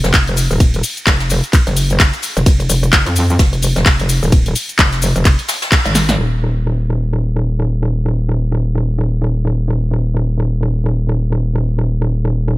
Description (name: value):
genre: bass house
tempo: 129 BPM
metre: 4/4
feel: swing 59% on 16ths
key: Eb minor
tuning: A4 = 440 Hz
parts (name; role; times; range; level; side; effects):
- metallic wobble bass; bass; 0.0-12.6 s; Eb1 to F2; -15 LUFS; equal; chorus, overdrive, sidechain pumping
- house drum kit; drums; 0.0-6.2 s; handclaps, hi-hat, ride cymbal, shaker, snare drum; -17 LUFS; left 1 dB; low-pass filter on hats, low-pass filter on perc, low-pass filter on snare, low-pass filter on cymbals
- jazz brush drum kit; drums; 0.0-6.2 s; hi-hat, snare drum; -25 LUFS; left 2 dB; none
- electronic kick drum; drums; 0.1-5.8 s; none; -12 LUFS; equal; none
room: digital ambience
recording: none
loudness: -12 LUFS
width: side -18 dB against mid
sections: 0.0-6.2 A section; 6.2-12.6 B section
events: drop 0.0-6.2; band accent 5.7; drum fill 6.0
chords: none